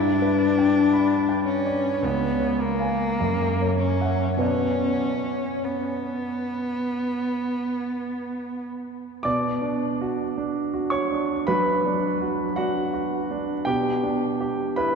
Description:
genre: classical, romantic duo for cello and grand piano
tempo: 48-56 BPM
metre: 4/4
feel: rubato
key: B minor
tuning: A4 = 440 Hz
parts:
  - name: rich cello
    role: melody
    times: 0.0-8.7 s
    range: A#3 to D4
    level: -24 LUFS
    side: left 2 dB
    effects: none
  - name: clear grand piano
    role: accompaniment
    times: 0.0-15.0 s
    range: C#2 to D6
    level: -24 LUFS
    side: right 2 dB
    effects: none
room: wet cathedral reverb, RT60 4.3 s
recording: dark, warm production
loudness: -22 LUFS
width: side -5 dB against mid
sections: 0.0-9.2 A section; 9.2-15.0 A section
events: none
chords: 0.0 G; 2.0 C#7; 3.2 F#7; 4.4 Bm; 13.7 Em7/B

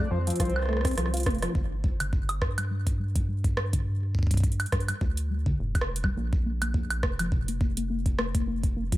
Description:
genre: IDM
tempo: 104 BPM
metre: 4/4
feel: swing 56% on 16ths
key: G minor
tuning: A4 = 441 Hz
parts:
  - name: warbly nostalgic lead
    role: melody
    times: 0.0-1.2 s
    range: C5 to D5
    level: -37 LUFS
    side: right 1 dB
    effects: chorus, dub echo
  - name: deep acid bass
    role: arpeggios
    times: 0.0-9.0 s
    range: G2 to G4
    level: -34 LUFS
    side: left 2 dB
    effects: analog chorus, digital delay
  - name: rubbery square bass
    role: bass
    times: 0.0-9.0 s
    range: F1 to G2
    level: -30 LUFS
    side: equal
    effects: none
  - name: booming analog drum machine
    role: drums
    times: 0.3-9.0 s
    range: hi-hat, rim click, woodblock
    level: -32 LUFS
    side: right 2 dB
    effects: none
  - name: electronic kick drum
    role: drums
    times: 0.4-9.0 s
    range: none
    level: -27 LUFS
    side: equal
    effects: none
room: digital ambience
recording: none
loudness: -25 LUFS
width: side -16 dB against mid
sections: 0.0-1.6 A section; 1.6-9.0 B section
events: drum fill 0.4-1.6; filter sweep on acid bass 1.6-9.0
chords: 0.0 F; 1.6 G5; 6.2 Bb5

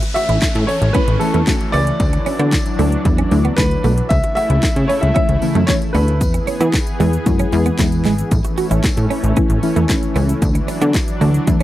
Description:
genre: dance-pop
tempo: 114 BPM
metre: 4/4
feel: straight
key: A major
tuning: A4 = 440 Hz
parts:
  - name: lush unison pad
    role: sustained chords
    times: 0.0-11.6 s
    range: C#3 to G#4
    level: -24 LUFS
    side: equal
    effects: chorus, sidechain pumping
  - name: twelve-string electric guitar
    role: riff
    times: 0.0-11.6 s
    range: G#3 to F#4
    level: -22 LUFS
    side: right 6 dB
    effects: wide subtle chorus
  - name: house drum kit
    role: drums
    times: 0.0-11.6 s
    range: handclaps, hi-hat, kick drum, shaker, snare drum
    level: -19 LUFS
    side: equal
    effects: overdrive
  - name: downlifter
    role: sound effects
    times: 0.0-4.1 s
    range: none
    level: -32 LUFS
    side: equal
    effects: none
  - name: clear grand piano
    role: melody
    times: 0.1-7.5 s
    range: A4 to E5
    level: -22 LUFS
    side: left 1 dB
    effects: tape echo
  - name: tambourine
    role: percussion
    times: 0.2-11.6 s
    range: none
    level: -38 LUFS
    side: left 6 dB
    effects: none
  - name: plucky analog bass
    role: bass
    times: 0.3-11.6 s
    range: G#1 to E3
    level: -16 LUFS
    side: equal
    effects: sidechain pumping
  - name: soft round pluck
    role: accompaniment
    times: 0.9-11.6 s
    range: E3 to F#4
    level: -21 LUFS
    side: left 2 dB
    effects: chorus, sidechain pumping
room: little or no reverb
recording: dry, close 1970s-style studio recording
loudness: -14 LUFS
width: side -14 dB against mid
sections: 0.0-11.6 A section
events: none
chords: 0.0 A; 2.0 Dadd9; 4.1 A/C#; 6.2 E; 8.3 A; 10.4 Dadd9

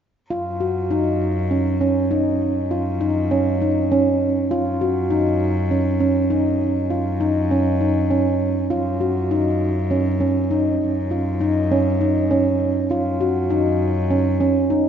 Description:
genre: contemporary instrumental, chamber music in an uneven meter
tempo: 200 BPM (eighths)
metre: 7/8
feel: straight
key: unclear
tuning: A4 = 439 Hz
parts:
  - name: handpan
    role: arpeggios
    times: 0.3-14.9 s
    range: C#4 to F#4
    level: -19 LUFS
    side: right 1 dB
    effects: none
  - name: rich cello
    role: bass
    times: 0.3-14.9 s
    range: F#2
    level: -24 LUFS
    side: left 1 dB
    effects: none
room: wet cathedral reverb, RT60 5.6 s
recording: in a vast, echoing space, nothing above 7.5 kHz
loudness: -18 LUFS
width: side -8 dB against mid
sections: 0.3-14.9 A section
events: none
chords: 0.3 F#5

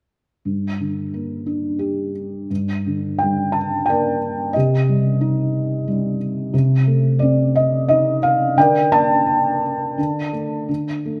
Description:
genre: classical, lyrical solo piano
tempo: 82-93 BPM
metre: 3/4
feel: rubato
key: G minor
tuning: A4 = 444 Hz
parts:
  - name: felt-muted upright piano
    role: solo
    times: 0.5-11.2 s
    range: G2 to A5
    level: -19 LUFS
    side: equal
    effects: none
room: light reverb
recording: none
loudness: -19 LUFS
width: mono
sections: 0.5-2.5 A section; 2.5-11.2 B section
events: none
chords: 0.5 Gm; 4.5 Cm; 6.5 Adim/C; 8.6 Gmadd9/D; 10.0 D5

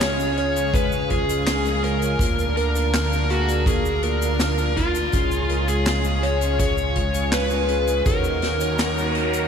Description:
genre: synthwave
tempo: 82 BPM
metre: 4/4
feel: straight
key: unclear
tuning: A4 = 441 Hz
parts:
  - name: dark smooth lead guitar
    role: melody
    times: 0.0-9.5 s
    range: F4 to Db5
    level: -24 LUFS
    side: left 1 dB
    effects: overdrive, ping-pong delay
  - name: soft synth bell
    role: second line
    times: 0.0-9.5 s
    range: F4 to Db5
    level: -32 LUFS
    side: right 1 dB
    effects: none
  - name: lush unison pad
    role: sustained chords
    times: 0.0-9.5 s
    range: Db3 to F5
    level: -29 LUFS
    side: equal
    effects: chorus, sidechain pumping
  - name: chorused polysynth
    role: stabs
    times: 0.0-9.5 s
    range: Ab3 to F5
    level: -28 LUFS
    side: left 2 dB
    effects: none
  - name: chorused synth bass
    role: bass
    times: 0.0-9.5 s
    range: Db2 to Eb2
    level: -25 LUFS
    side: equal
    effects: sidechain pumping
  - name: street-band drum kit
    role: drums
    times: 0.0-9.5 s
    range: handclaps, hi-hat, shaker, snare drum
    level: -28 LUFS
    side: left 1 dB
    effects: none
  - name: kick drum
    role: drums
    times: 0.7-8.2 s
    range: none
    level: -25 LUFS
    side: right 1 dB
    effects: none
  - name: noise sweep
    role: sound effects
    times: 8.7-9.5 s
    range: none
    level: -31 LUFS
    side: right 2 dB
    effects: none
room: moderate lush hall reverb, RT60 2.5 s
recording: bright 1980s-style digital production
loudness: -19 LUFS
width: side -7 dB against mid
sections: 0.0-9.5 A section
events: noise sweep 8.7-9.5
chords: 0.0 Db; 2.2 Bb/D; 5.1 Db; 8.1 Ebm7

